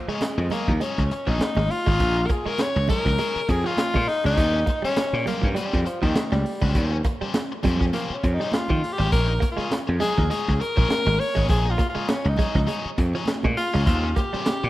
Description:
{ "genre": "funk", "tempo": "101 BPM", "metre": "4/4", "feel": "swing 56% on 16ths", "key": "Bb dorian", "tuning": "A4 = 440 Hz", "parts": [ { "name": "breathy tenor saxophone", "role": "melody", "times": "0.0-14.7 s", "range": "Eb3 to Db5", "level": "-26 LUFS", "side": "left 2 dB", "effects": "slapback echo" }, { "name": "direct-recorded clean electric guitar", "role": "riff", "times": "0.0-14.5 s", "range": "F3 to Bb3", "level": "-34 LUFS", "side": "right 6 dB", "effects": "spring reverb" }, { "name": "overdriven electric guitar", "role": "accompaniment", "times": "0.1-14.7 s", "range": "Db4 to Db5", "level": "-32 LUFS", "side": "left 4 dB", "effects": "none" }, { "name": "gritty slap bass", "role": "bass", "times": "0.1-14.7 s", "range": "Ab1 to Eb3", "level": "-23 LUFS", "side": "equal", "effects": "overdrive" }, { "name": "crunchy breakbeat drum kit", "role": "drums", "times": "0.1-14.6 s", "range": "hi-hat, kick drum, snare drum", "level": "-26 LUFS", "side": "equal", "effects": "none" }, { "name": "congas", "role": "percussion", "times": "0.2-14.6 s", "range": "none", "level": "-33 LUFS", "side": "right 3 dB", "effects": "none" } ], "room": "light reverb, studio reverb", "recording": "rough home demo mix", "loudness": "-20 LUFS", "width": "side -16 dB against mid", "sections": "0.0-14.7 A section", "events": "tenor saxophone solo 0.0-14.7", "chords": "0.0 Bbm7; 4.4 Eb13; 9.1 Bbm7; 13.9 Eb13" }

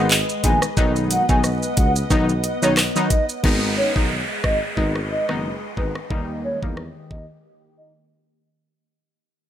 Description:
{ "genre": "dancehall", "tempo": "90 BPM", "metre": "4/4", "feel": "swing 56% on 16ths", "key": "G# minor", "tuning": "A4 = 440 Hz", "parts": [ { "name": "hollow clarinet-like synth lead", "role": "melody", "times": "0.0-7.9 s", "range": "B4 to G#5", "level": "-24 LUFS", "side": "equal", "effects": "chorus, low-pass filter, tape echo" }, { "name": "synth brass stab", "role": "accompaniment", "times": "0.0-6.8 s", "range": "D#3 to D#4", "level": "-24 LUFS", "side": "left 2 dB", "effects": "chorus, sidechain pumping, low-pass filter" }, { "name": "glassy FM pad", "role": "sustained chords", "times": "0.0-8.7 s", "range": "D#3 to F#5", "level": "-29 LUFS", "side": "equal", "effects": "ensemble chorus, built-in reverb, sidechain pumping, low-pass filter" }, { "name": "dark tuba", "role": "bass", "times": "0.0-7.3 s", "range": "F#1 to E2", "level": "-25 LUFS", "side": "equal", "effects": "none" }, { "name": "island pop drum kit", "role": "drums", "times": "0.1-7.3 s", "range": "crash cymbal, handclaps, hi-hat, kick drum, rim click, shaker", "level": "-21 LUFS", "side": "equal", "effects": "none" }, { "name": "downlifter", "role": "sound effects", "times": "3.4-8.8 s", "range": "none", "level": "-29 LUFS", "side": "right 2 dB", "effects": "none" } ], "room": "digital ambience", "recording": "none", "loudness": "-18 LUFS", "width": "side -10 dB against mid", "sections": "0.0-3.4 A section; 3.4-8.8 B section", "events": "fade-out 3.4-8.8; filter sweep 3.4-8.8; break 7.4-8.8", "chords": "0.0 G#m; 0.8 B; 3.4 G#m; 6.1 D#" }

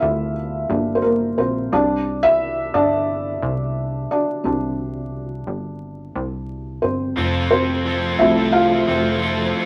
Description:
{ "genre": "pop", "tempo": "88 BPM", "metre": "4/4", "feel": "straight", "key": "F major", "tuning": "A4 = 440 Hz", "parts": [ { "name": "felt-muted upright piano", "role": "accompaniment", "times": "0.0-9.7 s", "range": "F3 to F5", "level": "-21 LUFS", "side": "equal", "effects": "none" }, { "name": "plucky analog bass", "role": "bass", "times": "0.0-9.5 s", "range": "F1 to D2", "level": "-29 LUFS", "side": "equal", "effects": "none" }, { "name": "bright studio string section", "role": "sustained chords", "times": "7.2-9.7 s", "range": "F3 to C4", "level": "-30 LUFS", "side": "equal", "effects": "none" }, { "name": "cranked stack guitar", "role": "riff", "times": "7.2-9.7 s", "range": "F3 to A4", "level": "-25 LUFS", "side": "equal", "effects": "overdrive" } ], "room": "moderate studio reverb, RT60 0.7 s", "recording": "vinyl crackle", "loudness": "-20 LUFS", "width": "mono", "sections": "0.0-7.2 A section; 7.2-9.7 B section", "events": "felt piano solo 0.0-7.2, 7.2-9.7", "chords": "0.0 Gm; 1.7 Csus2; 7.2 F" }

